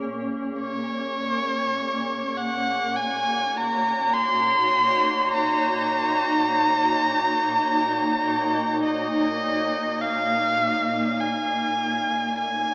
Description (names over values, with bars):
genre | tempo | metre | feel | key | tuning
ambient | 51 BPM | 4/4 | straight | unclear | A4 = 436 Hz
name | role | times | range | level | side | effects
granular cloud pad | sustained chords | 0.0-12.7 s | Bb2 to Db5 | -26 LUFS | equal | built-in reverb, shimmer reverb
dark electric violin | melody | 0.6-12.7 s | Db5 to C6 | -22 LUFS | equal | shimmer reverb, diffuse ambient delay
room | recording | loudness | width
wet huge ambient reverb, RT60 8.1 s | small speaker sound | -20 LUFS | side -36 dB against mid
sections
0.0-10.0 A section; 10.0-12.7 B section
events
none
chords
0.0 Bbm7; 0.6 Ab9sus4/Bb; 10.0 Bbm7